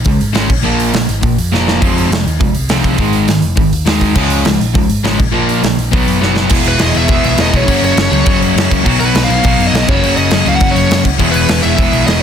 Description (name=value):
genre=punk rock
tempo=204 BPM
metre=4/4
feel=straight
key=unclear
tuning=A4 = 441 Hz
part: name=crunchy overdriven guitar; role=riff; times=0.0-12.2 s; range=E2 to Db4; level=-16 LUFS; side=left 13 dB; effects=none
part: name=hollow-body short-scale picked electric bass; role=bass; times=0.0-12.2 s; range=E1 to Ab2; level=-17 LUFS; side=equal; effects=none
part: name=big rock drum kit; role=drums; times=0.0-12.2 s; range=crash cymbal, hi-hat, kick drum, snare drum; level=-15 LUFS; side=equal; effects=none
part: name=distorted electric guitar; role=riff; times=0.1-12.2 s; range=Gb2 to G#4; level=-17 LUFS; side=right 13 dB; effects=distortion
part: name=bluesy overdriven lead guitar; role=melody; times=6.7-12.2 s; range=B4 to Gb5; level=-17 LUFS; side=equal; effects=distortion, ping-pong delay
room=little or no reverb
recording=dense, heavily limited modern master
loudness=-10 LUFS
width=side -8 dB against mid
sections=0.0-6.5 A section; 6.5-12.2 B section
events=drum fill 1.5, 6.2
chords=0.5 Bb5; 1.8 Fm; 3.0 Ab5; 4.2 Db; 5.2 Bb5; 5.9 B5; 6.5 E; 7.7 Gb; 8.9 B; 9.9 Gb; 11.2 E